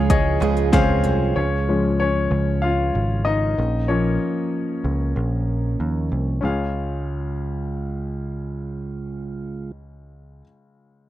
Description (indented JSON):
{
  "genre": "piano-driven pop",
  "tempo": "95 BPM",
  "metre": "4/4",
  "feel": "straight",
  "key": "Db major",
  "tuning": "A4 = 440 Hz",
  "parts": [
    { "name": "clear baby grand piano", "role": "accompaniment", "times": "0.0-11.1 s", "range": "Db2 to F5", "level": "-24 LUFS", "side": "left 4 dB", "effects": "none" },
    { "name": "mellow tonewheel organ", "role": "sustained chords", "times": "0.0-9.7 s", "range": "Db3 to F4", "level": "-29 LUFS", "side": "right 4 dB", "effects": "slow rotary speaker" },
    { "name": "fingerpicked steel-string acoustic guitar", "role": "riff", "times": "0.0-1.9 s", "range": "Db3 to Ab4", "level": "-24 LUFS", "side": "right 11 dB", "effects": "none" },
    { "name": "picked electric bass", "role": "bass", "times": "0.0-10.4 s", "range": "Ab1 to Eb2", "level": "-24 LUFS", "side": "equal", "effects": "none" },
    { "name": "pop drum kit", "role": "drums", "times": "0.1-1.2 s", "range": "hi-hat, kick drum, snare drum, toms", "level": "-20 LUFS", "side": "equal", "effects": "overdrive" }
  ],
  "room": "digital ambience",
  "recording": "dry, close 1970s-style studio recording",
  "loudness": "-20 LUFS",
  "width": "side -14 dB against mid",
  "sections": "0.0-1.4 A section; 1.4-6.4 B section; 6.4-9.0 C section",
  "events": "grand piano solo 1.4-6.4",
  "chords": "0.0 Db; 3.6 Bbm; 6.4 Db"
}